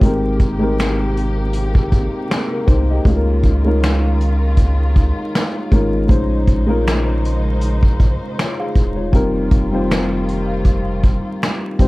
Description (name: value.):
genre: lo-fi hip hop.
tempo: 79 BPM.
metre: 4/4.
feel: swing 56% on 16ths.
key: Bb dorian.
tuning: A4 = 439 Hz.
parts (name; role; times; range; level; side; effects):
dark upright piano; accompaniment; 0.0-11.9 s; G3 to F5; -20 LUFS; left 1 dB; low-pass filter.
rich studio string section; sustained chords; 0.0-11.9 s; C3 to C5; -28 LUFS; equal; low-pass filter.
warm sub bass; bass; 0.0-11.9 s; Eb1 to Db2; -19 LUFS; equal; none.
vintage brush drum kit; drums; 0.0-11.9 s; finger snaps, hi-hat, kick drum, snare drum; -16 LUFS; equal; none.
room: light reverb.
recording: dark, warm production, vinyl crackle.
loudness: -14 LUFS.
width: side -20 dB against mid.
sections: 0.0-11.9 A section.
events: none.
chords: 0.0 Abmaj9; 3.1 Db69; 6.1 Bbm11; 9.1 F7sus4.